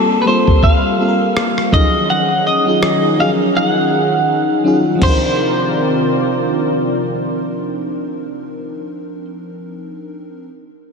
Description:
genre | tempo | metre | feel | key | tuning
contemporary R&B | 82 BPM | 4/4 | swing 58% on 16ths | unclear | A4 = 440 Hz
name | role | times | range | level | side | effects
twelve-string electric guitar | melody | 0.0-9.2 s | A4 to Gb5 | -17 LUFS | right 1 dB | lush chorus, analog delay
FM electric piano with soft pad layer | accompaniment | 0.0-10.5 s | F3 to Bb4 | -19 LUFS | left 1 dB | chorus
warm analog pad | sustained chords | 0.0-8.7 s | C3 to D5 | -19 LUFS | left 1 dB | chorus
dusty soul sampler-style drum kit | drums | 0.5-5.2 s | crash cymbal, kick drum, rim click | -18 LUFS | equal | none
room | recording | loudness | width
wet huge ambient reverb, RT60 5.0 s | dreamy mix soaked in reverb | -13 LUFS | side -5 dB against mid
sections
0.0-5.0 A section; 5.0-7.9 B section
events
silent gap 4.3-5.0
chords
0.0 Gm11; 1.7 Ebm11; 5.0 Cm11

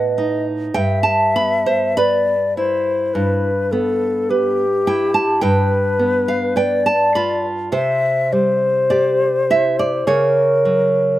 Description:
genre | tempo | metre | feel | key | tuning
romantic duo for flute and classical guitar | 52 BPM | 4/4 | rubato | E minor | A4 = 440 Hz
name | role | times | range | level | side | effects
mellow hollow silver concert flute | melody | 0.0-11.2 s | G4 to E5 | -18 LUFS | left 3 dB | slapback echo
nylon-string guitar | accompaniment | 0.0-11.2 s | G2 to B5 | -17 LUFS | right 3 dB | none
room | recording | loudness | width
little or no reverb | recorded outdoors, with no room sound | -15 LUFS | side -14 dB against mid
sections
0.0-11.2 A section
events
none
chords
0.0 B7/A; 0.7 Em/G; 5.4 G7; 7.7 C; 10.1 F#/C#

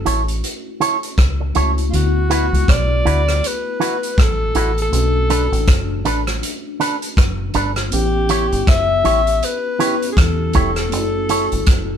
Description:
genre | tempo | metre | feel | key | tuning
lovers rock reggae | 80 BPM | 4/4 | swing 59% on 16ths | D major | A4 = 439 Hz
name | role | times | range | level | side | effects
breathy alto saxophone | melody | 0.0-12.0 s | F4 to E5 | -21 LUFS | left 3 dB | none
mellow tine electric piano | accompaniment | 0.0-12.0 s | A3 to G4 | -26 LUFS | left 2 dB | medium stereo tremolo, tape echo
deep dub fingered electric bass | bass | 0.0-12.0 s | E1 to E2 | -19 LUFS | equal | none
electric guitar with an envelope filter | stabs | 0.1-11.5 s | D4 to C#5 | -20 LUFS | right 4 dB | none
vintage drum kit | drums | 0.1-11.9 s | hi-hat, kick drum, rim click | -19 LUFS | equal | none
room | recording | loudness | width
moderate studio reverb, RT60 0.6 s | band playing live in one room | -15 LUFS | side -8 dB against mid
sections
0.0-1.9 A section; 1.9-12.0 B section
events
tine electric piano fill 11.7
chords
0.0 F#m7; 1.9 D69; 4.9 Bm7; 7.9 A7; 10.9 F#m7

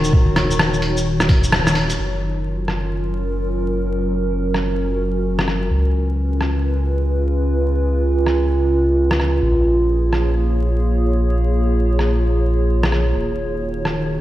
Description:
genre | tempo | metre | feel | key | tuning
future garage | 129 BPM | 4/4 | swing 62% on 16ths | unclear | A4 = 437 Hz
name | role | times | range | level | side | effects
warbly tape-like pad | sustained chords | 0.0-14.2 s | Db3 to Db5 | -20 LUFS | right 1 dB | chorus, built-in reverb, sidechain pumping
soft dub sub bass | bass | 0.0-14.2 s | Eb1 to Db2 | -19 LUFS | equal | sidechain pumping
lo-fi sampler-style drum kit | drums | 0.0-14.0 s | hi-hat, rim click, shaker | -21 LUFS | equal | none
electronic kick drum | drums | 0.1-1.4 s | none | -13 LUFS | equal | overdrive
room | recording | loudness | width
moderate lush hall reverb, RT60 2.0 s | played on a big sound system in a bare room, stone room reverb, vinyl crackle | -16 LUFS | side -14 dB against mid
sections
0.0-2.0 A section; 2.0-14.2 B section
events
kick drops out 1.5-2.0; band accent 1.5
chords
0.0 Ebm7; 2.0 Gbmaj7; 5.7 Db7; 9.4 Bbm7; 13.2 Ebm7

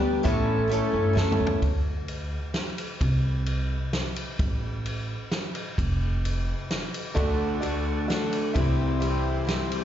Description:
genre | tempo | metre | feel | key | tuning
folk rock and heartland rock | 130 BPM | 3/4 | straight | D major | A4 = 440 Hz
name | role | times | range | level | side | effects
dark baby grand piano | accompaniment | 0.0-1.6, 7.1-9.8 s | D4 to E5 | -36 LUFS | right 4 dB | slapback echo
picked steel-string acoustic guitar | accompaniment | 0.0-1.6, 7.1-9.8 s | A2 to A4 | -30 LUFS | left 3 dB | slapback echo
hand-pumped harmonium | sustained chords | 0.0-1.6, 7.2-9.8 s | C4 to D5 | -35 LUFS | right 2 dB | none
electric guitar through a small old amp | riff | 0.0-1.6, 7.1-9.8 s | A2 to A4 | -28 LUFS | left 2 dB | slapback echo
upright bass | bass | 0.0-9.3 s | F1 to G2 | -27 LUFS | equal | none
vintage drum kit | drums | 0.3-9.8 s | hi-hat, kick drum, ride cymbal, snare drum, toms | -30 LUFS | equal | none
room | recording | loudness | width
small room ambience | live gig heard through the venue's PA, recital hall reverb, nothing above 7.6 kHz | -24 LUFS | side -10 dB against mid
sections
0.0-1.6 A section; 1.6-9.8 B section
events
drum fill 1.2-1.6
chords
0.2 A; 1.6 N.C.; 7.2 D; 8.5 C

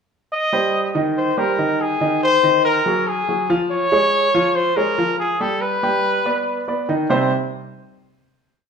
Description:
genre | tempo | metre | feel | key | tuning
latin | 142 BPM | 4/4 | straight | C phrygian | A4 = 440 Hz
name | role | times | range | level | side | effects
warm trumpet | melody | 0.3-7.3 s | Ab4 to Eb5 | -18 LUFS | left 2 dB | none
warm grand piano | arpeggios | 0.5-7.3 s | C3 to G5 | -20 LUFS | right 1 dB | none
room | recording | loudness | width
moderate large studio reverb, RT60 1.2 s | band playing live in one room | -16 LUFS | side -6 dB against mid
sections
0.3-7.1 verse; 7.1-8.7 final chord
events
none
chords
0.3 Cm; 2.0 Ab7; 3.7 Db; 5.4 G; 7.1 Cm

